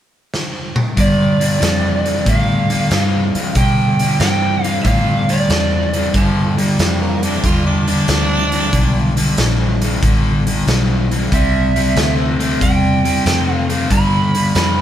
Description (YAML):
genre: electric blues shuffle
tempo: 93 BPM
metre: 4/4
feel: swing 68% on 8ths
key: G mixolydian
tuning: A4 = 439 Hz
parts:
  - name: raw garage drum kit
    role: drums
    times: 0.3-14.8 s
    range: hi-hat, kick drum, snare drum, toms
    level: -19 LUFS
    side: equal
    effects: none
  - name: lead guitar through a small cranked amp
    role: melody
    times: 1.0-6.1, 11.3-14.8 s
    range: D5 to B5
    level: -20 LUFS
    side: right 4 dB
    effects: overdrive
  - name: overdriven semi-hollow guitar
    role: riff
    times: 1.0-14.8 s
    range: G2 to A3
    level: -17 LUFS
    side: left 1 dB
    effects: none
  - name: vintage muted fingered electric bass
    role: bass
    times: 1.0-14.8 s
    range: A1 to B2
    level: -18 LUFS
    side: equal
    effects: none
  - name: growling tenor saxophone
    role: second line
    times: 6.2-9.6 s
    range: F3 to F4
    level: -22 LUFS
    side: right 2 dB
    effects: none
room: moderate stone room reverb, RT60 1.2 s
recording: band playing live in one room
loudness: -13 LUFS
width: side -11 dB against mid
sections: 1.0-14.8 A section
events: drum fill 0.3-1.0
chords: 0.0 N.C.; 1.0 G13; 11.3 C69; 13.9 G13